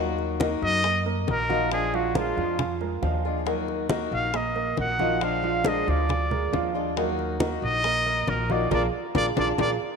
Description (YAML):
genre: latin, Cuban son and guajira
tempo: 137 BPM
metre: 4/4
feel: straight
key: Eb harmonic minor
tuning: A4 = 440 Hz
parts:
  - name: fingerpicked swing-style acoustic guitar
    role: accompaniment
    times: 0.0-9.7 s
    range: Eb3 to Gb4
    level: -30 LUFS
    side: left 10 dB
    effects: none
  - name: warm baby grand piano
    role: arpeggios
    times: 0.0-9.7 s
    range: F3 to Gb5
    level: -29 LUFS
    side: right 11 dB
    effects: tape echo
  - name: upright bass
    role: bass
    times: 0.0-9.8 s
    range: Bb1 to Gb2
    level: -30 LUFS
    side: equal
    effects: none
  - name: bongos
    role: percussion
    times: 0.2-9.7 s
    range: none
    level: -36 LUFS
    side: left 11 dB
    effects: none
  - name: congas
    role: percussion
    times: 0.2-9.7 s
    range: none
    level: -32 LUFS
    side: equal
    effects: none
  - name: trumpet with straight mute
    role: melody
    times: 0.6-9.7 s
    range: F4 to Gb5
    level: -27 LUFS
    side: equal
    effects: none
room: moderate echo chamber reverb, RT60 2.6 s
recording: 1960s-style stereo with parts hard left and right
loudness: -23 LUFS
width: side -5 dB against mid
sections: 0.0-10.0 A section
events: band accent 8.7-10.0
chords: 0.0 Ebm; 1.7 Bb7; 3.5 Ebm; 5.2 Bb7; 7.0 Ebm; 8.7 Bb7